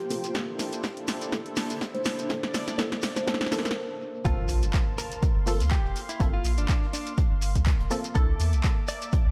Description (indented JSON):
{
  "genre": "deep house",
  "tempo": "123 BPM",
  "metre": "4/4",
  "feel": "swing 55% on 16ths",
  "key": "G dorian",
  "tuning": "A4 = 440 Hz",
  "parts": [
    { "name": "warm analog pad", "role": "sustained chords", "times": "0.0-9.3 s", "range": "Bb3 to D6", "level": "-41 LUFS", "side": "equal", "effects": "chorus, tremolo, sidechain pumping" },
    { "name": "filtered dub chord stab", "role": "stabs", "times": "0.0-9.3 s", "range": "Bb3 to A4", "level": "-37 LUFS", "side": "equal", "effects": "phaser, cassette tape, sidechain pumping, dub echo" },
    { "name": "granular cloud pad", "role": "texture", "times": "0.0-3.8 s", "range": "Bb3 to A5", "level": "-42 LUFS", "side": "equal", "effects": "built-in reverb, sidechain pumping" },
    { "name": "punchy analog drum machine", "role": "drums", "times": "0.1-9.2 s", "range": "handclaps, hi-hat, snare drum", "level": "-35 LUFS", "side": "equal", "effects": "none" },
    { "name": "soft-mallet drum kit", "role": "drums", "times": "0.1-9.3 s", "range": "hi-hat, snare drum", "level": "-52 LUFS", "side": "equal", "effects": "none" },
    { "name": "shekere", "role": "percussion", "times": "0.1-9.2 s", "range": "none", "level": "-42 LUFS", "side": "equal", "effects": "dub echo" },
    { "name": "electronic kick drum", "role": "drums", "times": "0.3-9.2 s", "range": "none", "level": "-27 LUFS", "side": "equal", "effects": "high-pass filter on kick" },
    { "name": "kalimba", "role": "melody", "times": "1.9-3.7 s", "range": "Bb4 to C5", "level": "-38 LUFS", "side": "equal", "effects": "tape echo" },
    { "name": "direct-recorded clean electric guitar", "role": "melody", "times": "4.3-9.2 s", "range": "D4 to D5", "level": "-39 LUFS", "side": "equal", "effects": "spring reverb, analog delay" },
    { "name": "round analog bass", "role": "bass", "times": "4.3-9.3 s", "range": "F1 to E2", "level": "-28 LUFS", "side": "equal", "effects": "sidechain pumping" },
    { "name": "impact", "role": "sound effects", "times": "4.3-6.2 s", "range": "none", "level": "-39 LUFS", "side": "equal", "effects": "none" }
  ],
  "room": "light reverb, studio reverb",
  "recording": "echo-heavy mix",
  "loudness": "-27 LUFS",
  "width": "mono",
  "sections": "0.0-4.3 A section; 4.3-9.3 B section",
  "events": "build-up 0.0-4.3; drum fill 0.0-3.8; filter sweep on synth stab 0.0-4.3; stop 3.8-4.3; drop 4.3-9.3; impact 4.3-6.2",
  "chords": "0.3 C13; 4.3 Gm11; 8.2 C13"
}